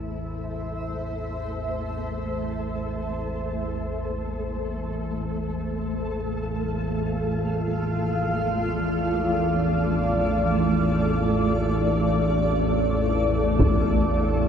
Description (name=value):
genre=dark ambient drone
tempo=free time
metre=none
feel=none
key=unclear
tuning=A4 = 435 Hz
part: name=granular cloud pad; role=sustained chords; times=0.0-14.5 s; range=A3 to F5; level=-26 LUFS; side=equal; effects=built-in reverb, wide subtle chorus, shimmer reverb
part: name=analog drone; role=drone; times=0.0-14.5 s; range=A1 to E2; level=-26 LUFS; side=equal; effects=chorus
part: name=flickering grainy texture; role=texture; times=0.0-14.5 s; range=A3 to A4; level=-34 LUFS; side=left 2 dB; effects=built-in reverb, lush chorus, shimmer reverb
part: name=taiko ensemble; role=percussion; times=13.6-13.8 s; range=none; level=-23 LUFS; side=equal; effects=low-pass filter on perc
room=wet plate reverb, RT60 2.9 s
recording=dreamy mix soaked in reverb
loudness=-23 LUFS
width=side -8 dB against mid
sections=0.0-14.5 A section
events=fade-in on synth drone 0.0-14.5; fade-in on ambient pad 0.0-14.5; fade-in on synth texture 0.0-14.5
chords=0.0 Am; 4.6 Dm; 13.6 Am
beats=free time